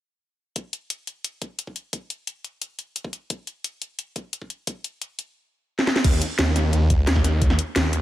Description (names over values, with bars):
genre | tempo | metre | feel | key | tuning
dark technical drum and bass | 175 BPM | 4/4 | straight | unclear | A4 = 439 Hz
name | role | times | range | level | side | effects
drum and bass drum kit | drums | 0.6-8.0 s | crash cymbal, hi-hat, snare drum | -24 LUFS | equal | none
electronic kick drum | drums | 0.6-7.5 s | none | -23 LUFS | equal | high-pass filter on kick, high-pass filter on room
snarling distorted saw bass | bass | 6.0-8.0 s | Eb2 | -20 LUFS | equal | distortion, overdrive
room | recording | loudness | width
light reverb | none | -22 LUFS | side -14 dB against mid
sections
0.6-6.0 A section; 6.0-8.0 B section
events
drum fill 5.8; drop 6.0-8.0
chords
none